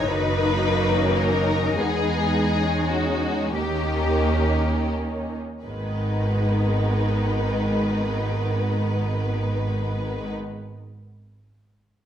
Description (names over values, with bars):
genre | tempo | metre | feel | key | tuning
classical, slow romantic movement for symphony orchestra | 27-36 BPM (dotted quarters) | 6/8 | rubato | G# minor | A4 = 440 Hz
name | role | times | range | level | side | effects
rich symphonic violin section | melody | 0.0-10.3 s | F#4 to B4 | -29 LUFS | left 4 dB | none
warm symphonic violin section | second line | 0.0-10.3 s | A#3 to D#4 | -29 LUFS | left 3 dB | none
rich symphonic viola section | accompaniment | 0.0-10.3 s | D#3 to A#3 | -28 LUFS | right 1 dB | none
rich studio double bass section | bass | 0.0-10.3 s | F#1 to E2 | -26 LUFS | right 2 dB | none
rich symphonic cello section | bass | 0.0-10.3 s | G#2 to G4 | -27 LUFS | equal | none
room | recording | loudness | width
wet recital hall reverb, RT60 1.3 s | none | -21 LUFS | side -9 dB against mid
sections
0.0-5.7 A section; 5.7-9.6 B section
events
slowing down 0.0-5.7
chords
0.1 D#m/F#; 1.8 E; 3.6 D#7; 5.7 G#m